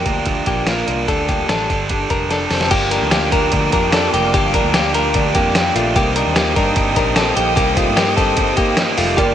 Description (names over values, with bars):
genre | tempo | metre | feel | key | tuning
jangly indie pop | 148 BPM | 4/4 | straight | G minor | A4 = 440 Hz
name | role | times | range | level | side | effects
biting overdriven guitar | accompaniment | 0.0-9.3 s | G2 to Bb4 | -19 LUFS | right 5 dB | slapback echo
direct-recorded clean electric guitar | arpeggios | 0.0-9.3 s | A3 to Bb4 | -19 LUFS | left 4 dB | none
vintage muted picked electric bass | bass | 0.0-9.3 s | F1 to G2 | -24 LUFS | equal | none
lo-fi sampler-style drum kit | drums | 0.1-9.3 s | crash cymbal, hi-hat, kick drum, snare drum | -20 LUFS | equal | none
muted studio string section | sustained chords | 2.7-9.3 s | G4 to Eb6 | -26 LUFS | left 2 dB | none
warbly lo-fi synth keys | accompaniment | 9.2-9.3 s | F4 to D5 | -17 LUFS | right 4 dB | chorus
room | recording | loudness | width
moderate lush hall reverb, RT60 2.3 s | big arena sound, nothing above 10.5 kHz | -14 LUFS | side -10 dB against mid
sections
0.0-2.7 A section; 2.7-9.3 B section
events
drum fill 2.3-2.7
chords
0.0 Bb; 1.1 Dsus4; 2.7 Gm7; 6.0 Cm7